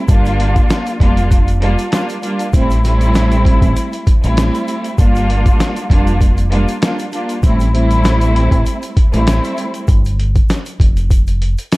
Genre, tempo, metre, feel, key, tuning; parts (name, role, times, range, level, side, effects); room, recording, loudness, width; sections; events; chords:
hip hop, boom-bap hip-hop; 98 BPM; 4/4; swing 55% on 16ths; G dorian; A4 = 444 Hz
warm studio string section; accompaniment; 0.0-9.8 s; G3 to F4; -17 LUFS; equal; cassette tape, high-pass filter, low-pass filter
deep dub fingered electric bass; bass; 0.1-11.5 s; F1 to A1; -15 LUFS; equal
boom bap sampler-style drum kit; drums; 0.1-11.8 s; hi-hat, kick drum, snare drum; -14 LUFS; equal
egg shaker; percussion; 0.1-11.8 s; -40 LUFS; left 6 dB
little or no reverb; dark, warm production; -12 LUFS; side -21 dB against mid
0.0-11.8 A section
0.1 Gm7; 2.5 Am7; 5.0 Gm7; 7.4 Am7; 9.9 Fsus2